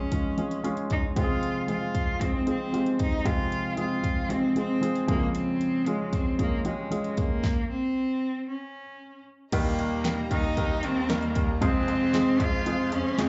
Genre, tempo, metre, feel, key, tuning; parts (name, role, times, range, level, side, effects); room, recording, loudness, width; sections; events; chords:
piano-driven pop; 115 BPM; 4/4; straight; F minor; A4 = 440 Hz
rich cello; melody; 0.0-13.3 s; Ab3 to F4; -31 LUFS; equal; slapback echo
warm grand piano; accompaniment; 0.0-13.3 s; F2 to Bb4; -31 LUFS; equal; slapback echo
pop drum kit; drums; 0.1-13.3 s; crash cymbal, hi-hat, kick drum, snare drum; -31 LUFS; equal
dark studio string section; sustained chords; 9.5-13.3 s; G4 to C6; -42 LUFS; equal
clear concert grand piano; bass; 9.5-13.3 s; Eb2 to F2; -34 LUFS; equal
light reverb; live gig heard through the venue's PA, club reverb, nothing above 7.8 kHz; -27 LUFS; mono
0.0-9.5 A section; 9.5-13.3 B section
stop 7.4-9.5
0.0 Db/F; 1.2 Fm; 5.1 Db/F; 9.5 Eb; 11.6 Fm